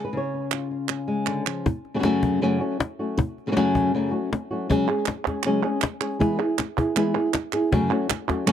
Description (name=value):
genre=flamenco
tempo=158 BPM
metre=4/4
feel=straight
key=unclear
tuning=A4 = 440 Hz
part: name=flamenco guitar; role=melody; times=0.0-8.5 s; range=F#2 to C#5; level=-23 LUFS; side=left 1 dB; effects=none
part: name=palmas hand claps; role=percussion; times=0.5-1.7, 4.9-8.5 s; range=none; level=-28 LUFS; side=right 18 dB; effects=none
part: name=cajon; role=percussion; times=1.7-8.5 s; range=none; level=-26 LUFS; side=left 2 dB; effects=none
room=light reverb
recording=dry, close 1970s-style studio recording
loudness=-22 LUFS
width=side -9 dB against mid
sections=0.0-1.7 A section; 1.7-7.7 B section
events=none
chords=0.0 C#; 1.7 F#m; 4.7 C#sus4; 6.2 E; 7.7 F#m